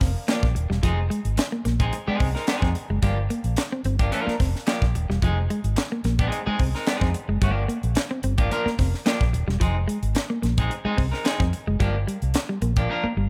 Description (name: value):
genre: funk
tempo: 109 BPM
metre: 4/4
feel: straight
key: F dorian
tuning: A4 = 439 Hz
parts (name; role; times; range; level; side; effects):
- clean electric guitar; riff; 0.0-13.3 s; F3 to C4; -31 LUFS; equal; none
- vintage muted fingered electric bass; bass; 0.0-13.3 s; Eb1 to F2; -27 LUFS; equal; none
- crisp fusion drum kit; drums; 0.0-12.9 s; hi-hat, kick drum, snare drum; -27 LUFS; equal; none
- clean electric guitar; accompaniment; 0.3-13.1 s; F3 to Bb4; -31 LUFS; equal; none
- group handclap; percussion; 0.3-12.5 s; none; -38 LUFS; equal; none
room: studio reverb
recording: none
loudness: -24 LUFS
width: mono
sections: 0.0-13.3 A section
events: drum fill 12.9-13.3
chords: 0.0 Gm7; 0.8 Fm7; 3.0 Gm7; 5.2 Fm7; 7.4 Gm7; 9.6 Fm7; 11.8 Gm7